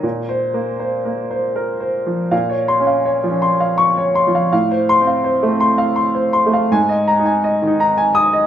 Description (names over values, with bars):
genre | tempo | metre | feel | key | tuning
neoclassical minimalist piano | 82 BPM | 3/4 | rubato | Bb minor | A4 = 440 Hz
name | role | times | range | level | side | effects
clear baby grand piano | solo | 0.0-8.5 s | Ab2 to Eb6 | -14 LUFS | equal | none
room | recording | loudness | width
moderate recital hall reverb, RT60 1.4 s | minimal, uncompressed stereo recording | -14 LUFS | side -10 dB against mid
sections
0.0-2.3 A section; 2.3-8.5 A section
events
none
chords
0.0 Bbsus2; 2.3 Bbmadd9; 4.5 F/A; 6.7 Absus2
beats
| 0.03 0.80 1.56 | 2.32 3.06 3.79 | 4.52 5.25 5.97 | 6.71 7.44 8.15